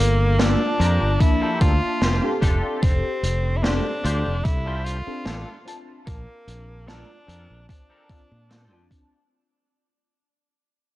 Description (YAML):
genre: vaporwave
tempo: 74 BPM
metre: 4/4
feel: straight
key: unclear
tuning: A4 = 439 Hz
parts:
  - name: edgy tenor saxophone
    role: melody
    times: 0.0-8.9 s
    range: Bb3 to F4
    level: -27 LUFS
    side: equal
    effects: tape echo
  - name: mellow FM electric piano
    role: accompaniment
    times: 0.0-9.3 s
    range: F3 to A5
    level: -28 LUFS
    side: left 2 dB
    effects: phaser, analog chorus
  - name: modern bright fingered electric bass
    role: bass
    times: 0.0-8.9 s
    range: F1 to Bb2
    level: -22 LUFS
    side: equal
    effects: tube saturation
  - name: clean electric guitar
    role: riff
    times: 0.4-9.2 s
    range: Bb3 to C5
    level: -31 LUFS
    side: left 1 dB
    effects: ensemble chorus
  - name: vintage drum kit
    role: drums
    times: 0.4-9.1 s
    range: hi-hat, snare drum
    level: -27 LUFS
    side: right 1 dB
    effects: gated reverb
  - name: electronic kick drum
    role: drums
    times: 1.2-9.1 s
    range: none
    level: -20 LUFS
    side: equal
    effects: overdrive
room: studio ambience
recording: cassette tape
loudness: -19 LUFS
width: side -16 dB against mid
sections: 0.0-9.3 A section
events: fade-out 0.0-9.3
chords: 0.0 Gm9; 2.4 F69; 6.1 Bbmaj9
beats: 0.40 1.21 2.02 | 2.83 3.64 4.45 5.26 | 6.07 6.88 7.69 8.50